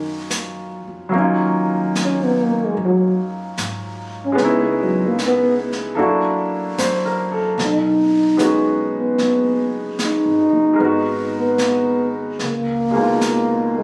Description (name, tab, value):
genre	jazz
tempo	74 BPM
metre	4/4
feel	swing 67% on 8ths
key	Eb minor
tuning	A4 = 439 Hz
part	breathy trombone	melody	0.0-13.8 s	Eb3 to D#4	-20 LUFS	equal	none
part	warm baby grand piano	accompaniment	0.0-13.8 s	Cb3 to C5	-23 LUFS	equal	none
part	upright bass	bass	0.0-13.8 s	F#1 to Ab2	-32 LUFS	equal	none
part	jazz brush drum kit	drums	0.3-13.8 s	brushed snare drum, hi-hat, snare drum	-30 LUFS	equal	none
room	little or no reverb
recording	recorded on a phone in the room, studio reverb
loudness	-19 LUFS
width	mono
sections	0.0-1.1 A section; 1.1-13.8 B section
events	trombone solo 1.1-13.8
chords	0.0 Ebm7; 4.4 Dbm7; 6.0 Gb7alt; 7.6 B69; 10.8 Abm9; 12.4 Db13